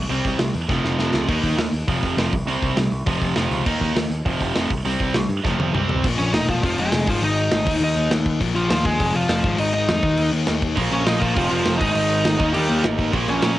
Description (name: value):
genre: punk rock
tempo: 203 BPM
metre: 4/4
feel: straight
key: F minor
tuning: A4 = 441 Hz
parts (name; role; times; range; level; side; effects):
- growling picked electric bass; bass; 0.0-13.6 s; E1 to G2; -25 LUFS; equal; overdrive
- sludgy distorted guitar; riff; 0.1-13.6 s; F2 to Eb4; -25 LUFS; left 5 dB; overdrive, cassette tape
- tight distorted guitar; riff; 0.1-6.0, 10.8-13.6 s; F2 to Eb4; -24 LUFS; right 6 dB; distortion, cassette tape
- big rock drum kit; drums; 0.2-13.5 s; crash cymbal, hi-hat, kick drum, snare drum, toms; -24 LUFS; equal; none
- smooth overdriven lead guitar; melody; 6.2-13.6 s; F3 to Eb5; -22 LUFS; equal; none
room: little or no reverb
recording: home recording on cassette, nothing above 10.9 kHz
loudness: -18 LUFS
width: side -15 dB against mid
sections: 0.0-6.0 A section; 6.0-13.6 B section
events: drum fill 0.7-1.3, 5.4-6.0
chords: 0.0 C5; 0.7 F5; 1.3 Eb5; 1.9 F5; 2.3 C5; 3.1 F5; 3.7 Eb5; 4.3 F5; 4.7 C5; 5.4 F5; 5.7 C5; 6.0 Bbm; 6.6 Fm; 7.1 Ab5; 7.7 Eb5; 8.4 Bb5; 9.0 Fm; 9.4 Ab5; 10.0 Eb5; 10.8 Bbm; 11.4 F5; 11.8 Ab5; 12.4 Eb